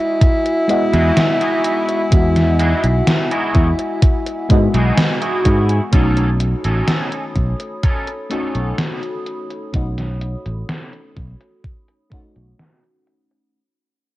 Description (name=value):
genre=vaporwave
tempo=63 BPM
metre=4/4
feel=straight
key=unclear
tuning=A4 = 438 Hz
part: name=warm tenor saxophone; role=melody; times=0.0-5.0 s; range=E4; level=-20 LUFS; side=left 1 dB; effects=tape echo
part: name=mellow FM electric piano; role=accompaniment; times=0.0-13.6 s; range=G#3 to D#5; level=-23 LUFS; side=left 1 dB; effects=phaser, lush chorus, analog delay
part: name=warbly tape-like pad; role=sustained chords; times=0.0-13.5 s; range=F#4 to D#6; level=-30 LUFS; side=right 1 dB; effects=chorus, built-in reverb
part: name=electric guitar at the edge of break-up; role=riff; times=0.2-9.3 s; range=C#4 to A4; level=-25 LUFS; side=right 1 dB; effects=analog chorus, analog delay
part: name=electronic kick drum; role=drums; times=0.2-12.3 s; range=none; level=-15 LUFS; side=equal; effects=overdrive
part: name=gated 80s digital drum machine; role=drums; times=0.2-13.5 s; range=hi-hat, snare drum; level=-20 LUFS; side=equal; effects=gated reverb, gated reverb snare, overdrive, low-pass filter on hats, low-pass filter on snare, low-pass filter on room
part: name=fingered electric bass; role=bass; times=0.9-12.5 s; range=A1 to G#2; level=-17 LUFS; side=equal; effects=low-pass filter
room=light reverb, digital ambience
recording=worn, warbling old tape, cassette tape, warbly pitch drift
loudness=-14 LUFS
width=side -17 dB against mid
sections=0.0-5.9 A section; 5.9-13.5 B section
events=fade-out 5.9-13.5; filter sweep on drum 5.9-13.5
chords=0.0 Emaj9; 5.9 B9